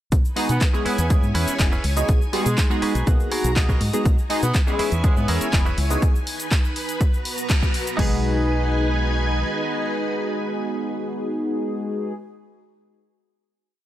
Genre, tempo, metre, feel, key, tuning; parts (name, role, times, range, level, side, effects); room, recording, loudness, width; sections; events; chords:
filtered disco house; 122 BPM; 4/4; straight; B major; A4 = 440 Hz
string machine, full ensemble; sustained chords; 0.1-12.1 s; B3 to A#5; -29 LUFS; equal; ensemble chorus, vintage 12-bit sampler grit, sidechain pumping
fingered electric bass; bass; 0.1-9.4 s; E1 to B2; -23 LUFS; equal; sidechain pumping
punchy analog drum machine; drums; 0.1-8.1 s; crash cymbal, kick drum; -19 LUFS; equal
punchy analog drum machine; drums; 0.1-8.0 s; handclaps, hi-hat, shaker; -28 LUFS; equal; sidechain pumping on hats, sidechain pumping on perc
clear horn section; melody; 0.4-5.3 s; G#3 to D#4; -30 LUFS; equal; sidechain pumping, analog delay
funky polysynth comp; accompaniment; 0.4-12.1 s; G#3 to G#4; -26 LUFS; equal; chorus, phaser, sidechain pumping
direct-recorded clean electric guitar; riff; 0.6-12.2 s; B3 to G#5; -31 LUFS; right 2 dB; vintage 12-bit sampler grit, sidechain pumping
light reverb, digital ambience; dry, gritty hardware recording; -19 LUFS; side -13 dB against mid
0.1-8.0 drop; 8.0-11.9 final chord
drop 0.1-8.0; clean electric guitar fill 2.6-4.1; band accent 7.5
0.1 B6; 0.9 E6; 2.1 B6; 3.1 G#m9/B; 4.1 B6; 4.8 E6; 6.0 B6; 7.0 F#add11/B; 8.0 B6